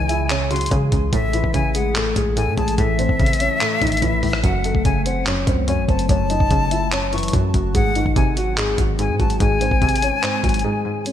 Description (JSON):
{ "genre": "hip hop, trap", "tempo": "145 BPM", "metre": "4/4", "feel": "half-time", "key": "unclear", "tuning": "A4 = 439 Hz", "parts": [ { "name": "felt-muted upright piano", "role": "melody", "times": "0.0-11.1 s", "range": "D#3 to F#5", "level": "-24 LUFS", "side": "left 1 dB", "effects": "low-pass filter" }, { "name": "bright silver concert flute", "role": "second line", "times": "0.0-11.0 s", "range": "E5 to C#6", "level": "-24 LUFS", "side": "left 4 dB", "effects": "ping-pong delay" }, { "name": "string-like resonator pluck", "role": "accompaniment", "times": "0.0-11.1 s", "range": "F#2 to E3", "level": "-26 LUFS", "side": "right 1 dB", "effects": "chorus" }, { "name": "glassy FM pad", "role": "sustained chords", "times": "0.0-11.1 s", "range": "C#3 to G#4", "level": "-28 LUFS", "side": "left 2 dB", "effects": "ensemble chorus, built-in reverb, tremolo, low-pass filter" }, { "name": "hard-hitting 808-style bass", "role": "bass", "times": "0.0-10.6 s", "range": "F#1 to C#3", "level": "-23 LUFS", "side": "equal", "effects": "none" }, { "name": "dusty soul sampler-style drum kit", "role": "drums", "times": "0.1-11.1 s", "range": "handclaps, hi-hat, kick drum, rim click", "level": "-22 LUFS", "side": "equal", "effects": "gated reverb" } ], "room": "light reverb", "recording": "bright 1980s-style digital production", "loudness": "-16 LUFS", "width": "side -10 dB against mid", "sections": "0.0-11.1 A section", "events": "break 10.6-11.1", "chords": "0.0 C#m; 1.1 A; 4.4 F#m; 7.7 G#", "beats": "0.30 0.71 | 1.13 1.54 1.96 2.37 | 2.78 3.20 3.61 4.02 | 4.44 4.85 5.26 5.68 | 6.09 6.51 6.92 7.33 | 7.75 8.16 8.57 8.99 | 9.40 9.82 10.23 10.64 | 11.06" }